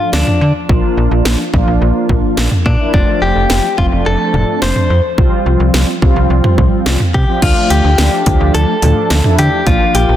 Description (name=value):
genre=synth-pop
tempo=107 BPM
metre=4/4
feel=straight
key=D minor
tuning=A4 = 440 Hz
part: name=direct-recorded clean electric guitar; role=melody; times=0.0-10.2 s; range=D4 to C5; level=-16 LUFS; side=left 2 dB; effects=spring reverb, tape echo
part: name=mellow synth brass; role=accompaniment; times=0.0-10.1 s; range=F3 to F4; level=-16 LUFS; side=equal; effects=chorus
part: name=slap-like FM bass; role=bass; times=0.1-10.2 s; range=F1 to D3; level=-14 LUFS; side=equal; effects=none
part: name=house drum kit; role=drums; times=0.1-10.1 s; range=crash cymbal, hi-hat, kick drum, snare drum, toms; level=-14 LUFS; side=equal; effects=none
room=light reverb, digital ambience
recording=dense, heavily limited modern master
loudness=-10 LUFS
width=side -11 dB against mid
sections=0.0-7.4 A section; 7.4-10.2 B section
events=none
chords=0.0 Dm; 0.7 Bb; 2.9 F; 5.2 Csus4; 7.4 Dm